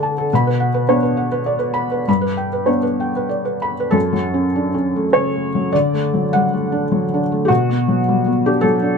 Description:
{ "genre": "neoclassical minimalist piano", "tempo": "102 BPM", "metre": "3/4", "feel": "rubato", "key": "F# phrygian", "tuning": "A4 = 435 Hz", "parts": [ { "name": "felt-muted upright piano", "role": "solo", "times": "0.0-9.0 s", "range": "F#2 to B5", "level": "-15 LUFS", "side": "equal", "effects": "none" } ], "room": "light reverb", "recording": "close, detailed microphones", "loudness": "-15 LUFS", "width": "side -5 dB against mid", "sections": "0.0-4.0 A section; 4.0-9.0 B section", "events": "none", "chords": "0.3 Bm; 2.1 G; 4.0 F#m; 5.7 D; 7.5 Bm" }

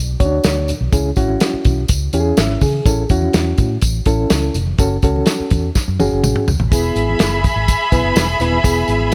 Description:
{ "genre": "uptempo 1960s-style soul", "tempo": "124 BPM", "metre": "4/4", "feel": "straight", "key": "unclear", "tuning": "A4 = 445 Hz", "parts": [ { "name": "vintage muted fingered electric bass", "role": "bass", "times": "0.0-9.1 s", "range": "D#1 to C#3", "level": "-22 LUFS", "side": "equal", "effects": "none" }, { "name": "reed electric piano", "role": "accompaniment", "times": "0.2-9.1 s", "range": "B3 to E5", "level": "-22 LUFS", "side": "equal", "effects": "overdrive, fast tremolo, tube saturation" }, { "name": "warm soul drum kit", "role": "drums", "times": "0.2-9.1 s", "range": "hi-hat, kick drum, snare drum, toms", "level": "-19 LUFS", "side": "equal", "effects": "none" }, { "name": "tambourine", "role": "percussion", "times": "0.2-9.1 s", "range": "none", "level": "-32 LUFS", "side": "equal", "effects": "none" }, { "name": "congas", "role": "percussion", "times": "0.5-9.1 s", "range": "none", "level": "-33 LUFS", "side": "equal", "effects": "none" }, { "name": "warm symphonic violin section", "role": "second line", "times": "6.7-9.1 s", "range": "G#4 to B5", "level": "-21 LUFS", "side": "equal", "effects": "none" } ], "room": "light reverb, studio reverb", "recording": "none", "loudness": "-16 LUFS", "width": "mono", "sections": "0.0-6.7 A section; 6.7-9.1 B section", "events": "drum fill 5.8-6.7", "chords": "0.0 Bm; 0.9 C#m; 2.9 A; 4.8 F#m; 6.7 E" }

